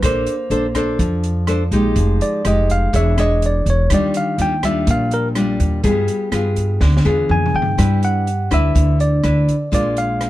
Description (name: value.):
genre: bossa nova.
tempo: 124 BPM.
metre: 4/4.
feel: straight.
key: unclear.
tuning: A4 = 440 Hz.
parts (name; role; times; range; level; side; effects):
nylon-string guitar; accompaniment; 0.0-10.3 s; Bb2 to C#5; -20 LUFS; left 1 dB; none.
upright bass; bass; 0.0-10.3 s; E1 to G2; -18 LUFS; equal; none.
open jazz drum kit; drums; 0.0-10.3 s; hi-hat, kick drum, rim click, snare drum, toms; -23 LUFS; equal; none.
tine electric piano; melody; 0.1-10.3 s; Bb4 to Ab5; -21 LUFS; equal; none.
room: little or no reverb.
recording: dark, warm production.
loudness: -15 LUFS.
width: side -15 dB against mid.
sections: 0.0-7.8 A section; 7.8-10.3 B section.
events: tine electric piano solo 0.0-7.8; drum fill 6.8-7.8.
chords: 0.0 Bbmaj9; 2.0 Fm9; 2.9 E6; 3.9 Ebmaj9; 5.8 G7b9; 7.8 G6; 9.7 Bb7.